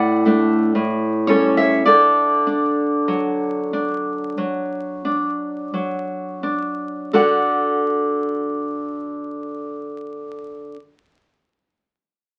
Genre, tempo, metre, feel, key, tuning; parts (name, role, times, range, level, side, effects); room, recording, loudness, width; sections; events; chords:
romantic piece for solo classical guitar; 40-64 BPM; 4/4; rubato; D major; A4 = 440 Hz
nylon-string guitar; solo; 0.0-10.8 s; A2 to F#5; -20 LUFS; equal
wet small room reverb, RT60 0.5 s; very old 78 rpm record, vinyl crackle; -20 LUFS; mono
0.0-7.1 A section; 7.1-12.4 B section
slowing down 0.0-7.1
0.0 D/A; 0.8 A7; 1.9 D